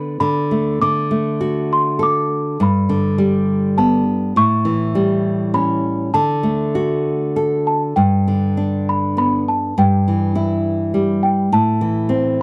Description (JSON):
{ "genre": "children's music, lullaby", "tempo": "101 BPM", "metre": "3/4", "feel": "rubato", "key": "G major", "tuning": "A4 = 440 Hz", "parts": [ { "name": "small celesta", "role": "melody", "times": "0.0-12.4 s", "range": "G5 to D6", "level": "-23 LUFS", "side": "equal", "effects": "none" }, { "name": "nylon-string guitar", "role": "accompaniment", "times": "0.0-12.4 s", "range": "G2 to B4", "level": "-19 LUFS", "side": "equal", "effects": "none" } ], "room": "little or no reverb", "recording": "dry, close 1970s-style studio recording", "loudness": "-18 LUFS", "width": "mono", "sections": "0.0-8.0 A section; 8.0-12.4 B section", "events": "none", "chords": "0.2 D5; 0.8 D; 2.6 Gadd9; 4.4 A7; 6.1 D; 8.0 G; 9.8 Em/G; 11.5 Am", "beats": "0.19 | 0.80 1.41 2.00 | 2.60 3.19 3.77 | 4.36 4.95 5.53 | 6.13 6.73 7.35 | 7.96 8.57 9.17 | 9.76 10.35 10.93 | 11.51 12.09" }